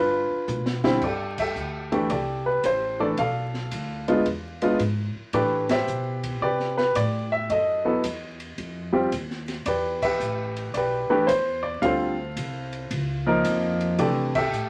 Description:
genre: jazz piano trio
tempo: 111 BPM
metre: 4/4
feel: swing 67% on 8ths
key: C major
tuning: A4 = 441 Hz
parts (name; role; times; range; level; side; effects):
- warm baby grand piano; melody; 0.0-14.7 s; D3 to F5; -26 LUFS; equal; none
- upright bass; bass; 0.0-14.7 s; A1 to C3; -34 LUFS; equal; none
- open jazz drum kit; drums; 0.5-14.7 s; crash cymbal, hi-hat, kick drum, ride cymbal, snare drum, toms; -38 LUFS; equal; none
room: moderate studio reverb, RT60 0.5 s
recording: vinyl crackle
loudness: -25 LUFS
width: mono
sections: 0.0-1.0 A section; 1.0-14.7 B section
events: drum fill 0.5-1.0; band accent 1.3, 5.6, 9.9, 14.3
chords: 0.0 G7; 1.0 C69; 3.2 Bm7b5; 4.3 E7b9; 5.3 Am11; 7.5 F#m7; 8.6 F7sus2; 9.7 Em7; 11.8 Dm7; 12.9 Dbadd9; 14.0 C69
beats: 0.48 | 1.02 1.56 2.10 2.64 | 3.18 3.72 4.26 4.80 | 5.34 5.88 6.42 6.96 | 7.50 8.04 8.58 9.12 | 9.66 10.20 10.74 11.28 | 11.82 12.37 12.90 13.45 | 13.99 14.53

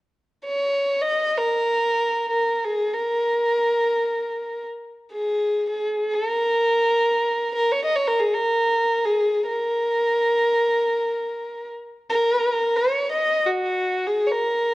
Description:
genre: indian classical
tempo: free time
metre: none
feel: none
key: Bb raga malkauns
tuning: A4 = 440 Hz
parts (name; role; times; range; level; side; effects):
- rich violin; solo; 0.5-14.7 s; Gb4 to Eb5; -20 LUFS; equal; none
room: moderate recital hall reverb, RT60 1.4 s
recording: worn, warbling old tape, cassette tape, warbly pitch drift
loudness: -20 LUFS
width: side -18 dB against mid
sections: 0.1-14.7 A section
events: none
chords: none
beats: free time

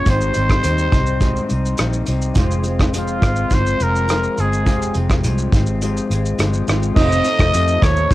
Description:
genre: indie pop, bedroom pop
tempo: 104 BPM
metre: 4/4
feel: straight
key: unclear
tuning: A4 = 440 Hz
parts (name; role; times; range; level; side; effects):
- growling trumpet; melody; 0.0-8.1 s; F4 to Eb5; -21 LUFS; equal; wide subtle chorus, cassette tape, analog delay
- electric guitar through a small old amp; accompaniment; 0.0-8.1 s; F2 to F4; -23 LUFS; left 5 dB; wide subtle chorus, warbly pitch drift
- warm analog keys; accompaniment; 0.0-8.1 s; Ab3 to C5; -30 LUFS; right 7 dB; chorus, cassette tape
- vintage muted fingered electric bass; bass; 0.1-8.1 s; F1 to F2; -20 LUFS; equal; none
- unplugged drum kit; drums; 0.1-8.1 s; crash cymbal, hi-hat, kick drum, rim click, shaker; -19 LUFS; equal; none
room: studio reverb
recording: home recording on cassette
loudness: -15 LUFS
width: side -16 dB against mid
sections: 0.0-7.0 A section; 7.0-8.1 B section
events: none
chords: 0.1 Abmaj7; 2.4 Fm; 7.0 F7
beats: | 0.07 0.64 1.22 1.79 | 2.36 2.94 3.51 4.09 | 4.66 5.24 5.81 6.38 | 6.96 7.53 8.10

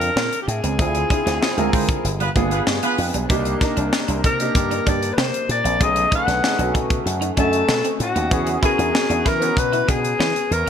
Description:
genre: polished 1980s jazz-funk pop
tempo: 96 BPM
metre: 4/4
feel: straight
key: unclear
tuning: A4 = 438 Hz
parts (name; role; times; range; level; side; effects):
- breathy alto saxophone; melody; 0.0-10.7 s; F#4 to F#5; -22 LUFS; left 3 dB; none
- warm concert grand piano; accompaniment; 0.0-10.7 s; A3 to Bb5; -24 LUFS; right 1 dB; lush chorus
- slap bass with an envelope filter; bass; 0.0-10.7 s; G1 to E3; -24 LUFS; equal; none
- tight funk drum kit; drums; 0.0-10.7 s; hi-hat, kick drum, snare drum; -22 LUFS; equal; none
- semi-hollow electric guitar; riff; 0.2-10.7 s; G3 to E4; -29 LUFS; right 5 dB; wide subtle chorus
- mellow horn section; second line; 1.7-3.0 s; B3 to C5; -26 LUFS; right 1 dB; none
room: light reverb, small room ambience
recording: bright 1980s-style digital production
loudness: -17 LUFS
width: side -8 dB against mid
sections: 0.0-10.7 A section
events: band accent 0.8-3.3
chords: 0.0 Bbmaj9; 0.8 Dm7b5; 2.0 G7b9; 3.3 Cm9; 5.8 B13; 8.3 E6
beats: 0.16 | 0.79 1.42 2.04 2.67 | 3.30 3.92 4.55 5.18 | 5.81 6.43 7.06 7.69 | 8.31 8.94 9.57 10.20

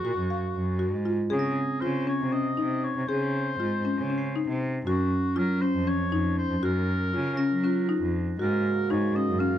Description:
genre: contemporary instrumental, contemporary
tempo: 237 BPM (eighths)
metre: 7/8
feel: straight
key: Gb lydian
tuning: A4 = 438 Hz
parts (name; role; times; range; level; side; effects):
- warm oboe; melody; 0.0-9.6 s; Gb4 to F5; -32 LUFS; left 3 dB; none
- vibraphone with soft mallets; second line; 0.0-9.6 s; C4 to Gb4; -31 LUFS; right 5 dB; analog delay
- buzzing marimba with medium hard mallets; arpeggios; 0.0-9.6 s; Db4 to F5; -30 LUFS; left 5 dB; none
- rich cello; bass; 0.0-9.5 s; F2 to Gb3; -28 LUFS; equal; none
- glockenspiel with soft plastic mallets; texture; 1.4-8.6 s; Gb6 to C7; -44 LUFS; right 6 dB; none
- pedal harmonium; sustained chords; 8.4-9.6 s; Db3 to Gb4; -38 LUFS; right 3 dB; none
room: moderate studio reverb, RT60 0.6 s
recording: dark, warm production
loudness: -24 LUFS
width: side -10 dB against mid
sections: 0.0-1.3 A section; 1.3-9.6 B section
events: none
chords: 0.0 Gbmaj7(no3); 1.3 Dbmaj7sus2; 4.9 Gbmaj7; 8.4 Ab9sus4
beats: 0.04 0.30 0.55 0.81 1.06 | 1.31 1.57 1.82 2.08 2.33 2.58 2.84 | 3.09 3.35 3.60 3.85 4.11 4.36 4.61 | 4.87 5.12 5.37 5.63 5.88 6.13 6.39 | 6.64 6.89 7.15 7.40 7.65 7.91 8.16 | 8.41 8.67 8.92 9.17 9.43

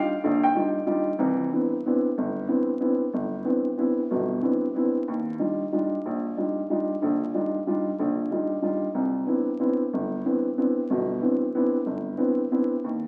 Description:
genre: jazz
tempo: 186 BPM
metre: 3/4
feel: swing 61% on 8ths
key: C major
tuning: A4 = 441 Hz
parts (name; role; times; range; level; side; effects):
- dark upright piano; solo; 0.0-13.1 s; G1 to G5; -26 LUFS; equal; none
room: wet large studio reverb, RT60 1.4 s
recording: very old 78 rpm record, vinyl crackle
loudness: -26 LUFS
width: mono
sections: 0.0-1.2 A section; 1.2-13.1 B section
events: none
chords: 0.0 Ebmaj9; 1.2 Cmaj9; 5.1 Ebmaj9; 9.0 Cmaj9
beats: | 0.22 0.55 0.87 | 1.19 1.52 1.84 | 2.16 2.49 2.81 | 3.14 3.46 3.78 | 4.11 4.43 4.75 | 5.08 5.40 5.72 | 6.05 6.37 6.70 | 7.02 7.34 7.67 | 7.99 8.31 8.64 | 8.96 9.28 9.61 | 9.93 10.25 10.57 | 10.90 11.22 11.54 | 11.87 12.19 12.51 | 12.84

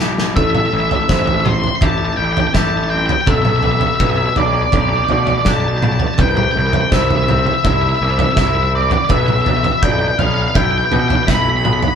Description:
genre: post-rock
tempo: 82 BPM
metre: 4/4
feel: straight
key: A minor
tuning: A4 = 440 Hz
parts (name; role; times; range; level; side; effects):
- felt-muted upright piano; arpeggios; 0.0-12.0 s; A4 to E5; -25 LUFS; right 1 dB; none
- twangy electric guitar; arpeggios; 0.0-12.0 s; A2 to G4; -26 LUFS; left 3 dB; none
- fuzz picked electric bass; bass; 0.0-11.8 s; A1 to B2; -19 LUFS; equal; overdrive
- loose indie drum kit; drums; 0.2-12.0 s; kick drum, snare drum, toms; -17 LUFS; right 1 dB; none
- octave-fuzz lead guitar; melody; 0.4-12.0 s; D5 to C6; -18 LUFS; left 1 dB; distortion
room: moderate studio reverb, RT60 0.5 s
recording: band playing live in one room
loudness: -13 LUFS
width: side -7 dB against mid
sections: 0.4-12.0 A section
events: drum fill 0.0-0.4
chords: 0.4 Am7; 3.3 Gadd9/B; 6.2 C; 9.1 Em/B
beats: | 0.37 1.10 1.83 2.56 | 3.28 4.01 4.74 5.47 | 6.19 6.92 7.65 8.38 | 9.10 9.83 10.55 11.28

